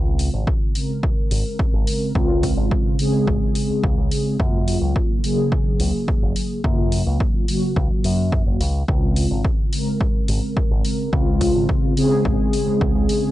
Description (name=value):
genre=nu-disco, nu disco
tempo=107 BPM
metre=4/4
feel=straight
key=Db major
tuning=A4 = 440 Hz
part: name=mellow synth brass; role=accompaniment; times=0.0-13.3 s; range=Db3 to Bb4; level=-21 LUFS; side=equal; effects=chorus, sidechain pumping, tape echo
part: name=picked electric bass with an envelope filter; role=bass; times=0.0-13.1 s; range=Gb1 to Gb2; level=-23 LUFS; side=equal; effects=none
part: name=electronic hi-hat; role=drums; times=0.2-13.2 s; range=none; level=-31 LUFS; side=left 1 dB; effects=none
part: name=electronic kick drum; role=drums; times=0.5-12.9 s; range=none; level=-21 LUFS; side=equal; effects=none
room=little or no reverb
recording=dry, gritty hardware recording, transformer saturation, cassette tape, nothing above 10.3 kHz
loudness=-17 LUFS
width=side -15 dB against mid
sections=0.0-13.3 A section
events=filter sweep on analog polysynth 0.0-13.3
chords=0.0 Dbmaj7; 4.4 Gbmaj7; 8.6 Dbmaj7